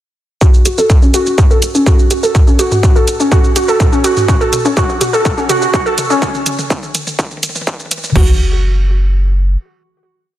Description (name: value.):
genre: melodic techno.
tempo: 124 BPM.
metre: 4/4.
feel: straight.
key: F# phrygian.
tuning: A4 = 440 Hz.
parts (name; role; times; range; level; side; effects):
warbly dusty pluck; arpeggios; 0.4-8.4 s; C#4 to A4; -14 LUFS; equal; lush chorus, sidechain pumping, digital delay.
techno drum kit; drums; 0.4-8.3 s; crash cymbal, kick drum, toms; -11 LUFS; equal; distortion, overdrive.
techno drum kit; drums; 0.4-8.2 s; hi-hat, shaker, toms; -19 LUFS; equal; overdrive.
tight sequencer bass; bass; 0.5-9.6 s; F#1 to G2; -16 LUFS; equal; sidechain pumping, high-pass filter.
room: light reverb.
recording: dense, heavily limited modern master, high-pass filter.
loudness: -10 LUFS.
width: side -13 dB against mid.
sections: 0.4-8.2 build; 8.2-10.4 final note.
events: build-up 0.4-8.2; drum fill 0.4-8.2; filter sweep 0.4-8.2.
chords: none.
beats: | 0.41 0.90 1.38 1.87 | 2.35 2.83 3.32 3.80 | 4.29 4.77 5.25 5.74 | 6.22 6.70 7.19 7.67 | 8.16 8.64 9.12.